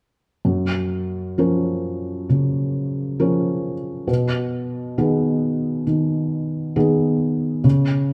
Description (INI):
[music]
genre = neoclassical minimalist piano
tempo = 67 BPM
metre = 4/4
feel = rubato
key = F# major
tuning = A4 = 440 Hz
[part]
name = felt-muted upright piano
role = solo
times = 0.4-8.1 s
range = F#2 to A#4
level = -21 LUFS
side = equal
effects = none
[sound]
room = wet large studio reverb, RT60 1.4 s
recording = band playing live in one room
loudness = -21 LUFS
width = mono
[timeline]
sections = 0.5-8.1 A section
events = none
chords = 0.5 F#maj7; 4.1 B6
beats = | 0.46 1.38 2.29 3.19 | 4.08 4.98 5.88 6.76 | 7.64